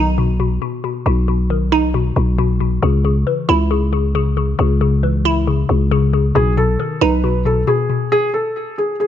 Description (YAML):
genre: hip hop, trap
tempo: 136 BPM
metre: 4/4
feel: half-time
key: unclear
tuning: A4 = 440 Hz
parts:
  - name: glassy wavetable pluck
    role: accompaniment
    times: 0.0-9.0 s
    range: B2 to E4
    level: -17 LUFS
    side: left 3 dB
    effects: chorus
  - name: growling 808-style bass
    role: bass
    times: 0.0-7.7 s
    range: B1 to C#2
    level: -17 LUFS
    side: equal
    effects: none
  - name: felt-muted upright piano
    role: melody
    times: 6.4-9.1 s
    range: G#4 to B4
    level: -18 LUFS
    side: equal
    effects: digital delay
room: light reverb, small room ambience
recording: none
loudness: -14 LUFS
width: side -10 dB against mid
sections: 0.0-9.1 A section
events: break 0.0-2.8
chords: 0.0 B; 2.8 C#m; 6.4 B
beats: 0.18 0.62 | 1.06 1.50 1.94 2.38 | 2.82 3.27 3.71 4.15 | 4.59 5.03 5.47 5.91 | 6.35 6.79 7.24 7.68 | 8.12 8.56 9.00